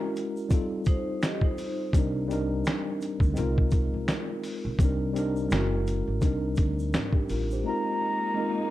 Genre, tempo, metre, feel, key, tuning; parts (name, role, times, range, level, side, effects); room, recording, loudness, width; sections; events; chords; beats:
lo-fi hip hop; 84 BPM; 4/4; swing 58% on 16ths; C minor; A4 = 440 Hz
mellow hollow jazz flute; melody; 0.0-0.1, 7.7-8.7 s; Bb5; -29 LUFS; equal; low-pass filter
tine electric piano; accompaniment; 0.0-8.7 s; G3 to C5; -30 LUFS; left 1 dB; medium stereo tremolo, low-pass filter
lo-fi sampler-style drum kit; drums; 0.2-7.5 s; finger snaps, hi-hat, kick drum, snare drum; -26 LUFS; equal
egg shaker; percussion; 0.2-7.6 s; -55 LUFS; right 5 dB
vibraphone with hard mallets; second line; 0.9-1.9 s; Eb4 to Eb5; -35 LUFS; equal; low-pass filter, analog delay
upright bass; bass; 1.9-7.6 s; F#1 to D2; -30 LUFS; equal
warm studio string section; sustained chords; 7.7-8.7 s; Ab3 to Eb4; -35 LUFS; equal; low-pass filter
light reverb; dark, warm production; -25 LUFS; side -15 dB against mid
0.0-7.7 A section; 7.7-8.7 B section
break 0.0-1.9
0.0 F#9; 0.5 F9; 1.9 Cm7; 3.4 Ab69/C; 4.8 Cm7; 5.5 F#9; 6.2 Cm9; 7.7 Bb9sus4
0.51 1.22 | 1.94 2.65 3.37 4.08 | 4.79 5.51 6.22 6.94 | 7.65 8.37